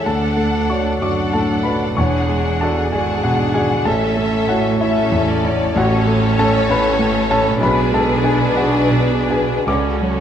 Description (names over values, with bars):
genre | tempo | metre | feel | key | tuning
classical | 51-66 BPM (dotted quarters) | 12/8 | rubato | A major, F# minor from 5.8 s | A4 = 440 Hz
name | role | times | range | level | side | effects
warm concert grand piano | melody | 0.0-10.2 s | A1 to D6 | -17 LUFS | left 1 dB | none
warm studio violin section | melody | 0.0-10.2 s | A4 to F#5 | -25 LUFS | left 3 dB | none
rich studio violin section | second line | 0.0-10.2 s | F#4 to A4 | -25 LUFS | left 4 dB | none
rich studio viola section | accompaniment | 0.0-10.2 s | C#4 to D4 | -24 LUFS | right 1 dB | none
dark studio double bass section | bass | 0.0-10.2 s | E1 to D2 | -26 LUFS | right 5 dB | none
warm studio cello section | bass | 0.0-10.2 s | D2 to C#3 | -24 LUFS | right 5 dB | none
room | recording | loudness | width
moderate concert hall reverb, RT60 2.2 s | none | -14 LUFS | side -9 dB against mid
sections
0.0-10.2 A section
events
none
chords
0.0 D; 2.0 E13; 3.9 A; 7.6 G#dim/B; 9.7 F#m/C#